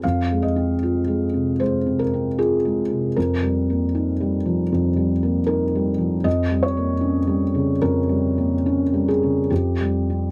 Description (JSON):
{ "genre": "neoclassical minimalist piano", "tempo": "76 BPM", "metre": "4/4", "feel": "uneven beats, rubato", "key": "F minor", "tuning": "A4 = 441 Hz", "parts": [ { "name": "felt-muted upright piano", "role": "solo", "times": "0.0-10.3 s", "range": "F2 to F5", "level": "-21 LUFS", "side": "equal", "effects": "none" } ], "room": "light reverb", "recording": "none", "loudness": "-21 LUFS", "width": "mono", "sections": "0.0-10.3 A section", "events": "none", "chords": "0.0 Fm7; 3.2 Ebadd9/F; 6.3 Gdim/F; 9.5 C5/F" }